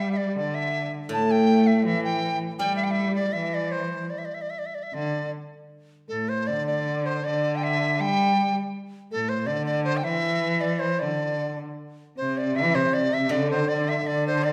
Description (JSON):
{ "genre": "chinese traditional, Chinese chamber ensemble", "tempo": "79 BPM", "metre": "2/4", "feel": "rubato", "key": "D shang mode", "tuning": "A4 = 444 Hz", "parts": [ { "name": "bright large dizi", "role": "melody", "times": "0.0-14.5 s", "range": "A4 to A5", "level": "-28 LUFS", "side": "equal", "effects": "none" }, { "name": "rich cello", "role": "second line", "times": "0.0-14.5 s", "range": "A2 to A3", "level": "-28 LUFS", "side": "equal", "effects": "none" }, { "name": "steel-string zither", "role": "accompaniment", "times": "0.0-4.9, 13.3-14.5 s", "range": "A2 to G3", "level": "-32 LUFS", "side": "equal", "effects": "none" } ], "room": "wet recital hall reverb, RT60 1.3 s", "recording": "none", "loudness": "-25 LUFS", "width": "mono", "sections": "0.0-5.7 A section; 5.7-14.5 B section", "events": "none", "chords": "none", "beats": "0.35 | 1.11 1.86 | 2.60 3.36 | 4.12 4.91 | 5.70 6.47 | 7.24 7.99 | 8.73 9.48 | 10.23 11.00 | 11.78 12.56 | 13.32 14.06" }